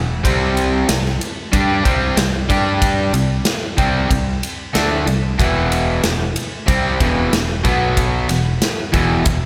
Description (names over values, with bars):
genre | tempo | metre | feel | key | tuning
classic rock | 93 BPM | 4/4 | straight | unclear | A4 = 439 Hz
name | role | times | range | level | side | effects
overdriven semi-hollow guitar | riff | 0.0-9.5 s | E2 to G4 | -20 LUFS | equal | spring reverb, slapback echo
fingered electric bass | bass | 0.0-9.5 s | E1 to G2 | -24 LUFS | equal | none
big rock drum kit | drums | 0.2-9.4 s | kick drum, ride cymbal, snare drum | -22 LUFS | equal | none
room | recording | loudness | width
moderate concert hall reverb, RT60 2.3 s | big arena sound | -17 LUFS | mono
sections
0.0-9.5 A section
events
none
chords
0.2 C5; 2.5 G5; 3.1 C5; 5.4 Em; 7.6 B5; 8.3 E5